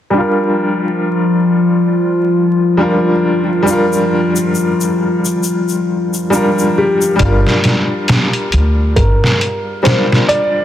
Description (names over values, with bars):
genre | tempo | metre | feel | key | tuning
trip hop | 68 BPM | 4/4 | swing 58% on 16ths | G minor | A4 = 442 Hz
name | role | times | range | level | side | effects
clear upright piano | accompaniment | 0.1-10.6 s | G3 to Bb4 | -16 LUFS | equal | tremolo, low-pass filter, tape echo
warbly tape-like pad | sustained chords | 0.5-7.2 s | F3 to F4 | -15 LUFS | left 1 dB | chorus, built-in reverb, vintage 12-bit sampler grit
egg shaker | percussion | 3.7-7.2 s | none | -25 LUFS | left 5 dB | none
felt-muted upright piano | melody | 6.8-10.6 s | G4 to D5 | -17 LUFS | equal | tape echo
upright bass | bass | 7.2-9.2 s | G1 to D2 | -14 LUFS | equal | none
trip hop sampler-style drum kit | drums | 7.2-10.5 s | hi-hat, kick drum, snare drum | -14 LUFS | equal | none
room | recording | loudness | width
light reverb, small room ambience | dense, heavily limited modern master, vinyl crackle | -11 LUFS | side -11 dB against mid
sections
0.1-7.2 A section; 7.2-10.6 B section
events
none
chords
0.1 Gm7